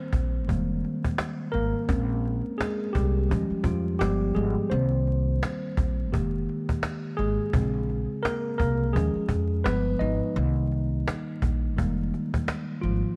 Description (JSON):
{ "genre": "lo-fi hip hop", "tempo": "85 BPM", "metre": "4/4", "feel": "swing 56% on 16ths", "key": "unclear", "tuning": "A4 = 441 Hz", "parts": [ { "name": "mellow tine electric piano", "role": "accompaniment", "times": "0.0-13.2 s", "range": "Db3 to Eb5", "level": "-30 LUFS", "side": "equal", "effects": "overdrive, low-pass filter" }, { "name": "upright bass", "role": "bass", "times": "0.1-13.0 s", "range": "F1 to F2", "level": "-29 LUFS", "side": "equal", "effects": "none" }, { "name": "cajon", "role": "drums", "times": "0.1-12.9 s", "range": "none", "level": "-32 LUFS", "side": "equal", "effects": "none" } ], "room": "small room reverb", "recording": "vinyl crackle", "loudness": "-27 LUFS", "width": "mono", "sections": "0.0-13.2 A section", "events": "tine electric piano solo 0.0-13.2", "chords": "0.5 Fm11; 1.9 Bbm9; 3.3 Eb9sus4; 4.0 G7b9; 4.7 Cm7; 6.1 Fm11; 7.5 Bbm9; 8.9 Eb9sus4; 9.7 G7b9; 10.4 Cm7; 11.8 Fm11" }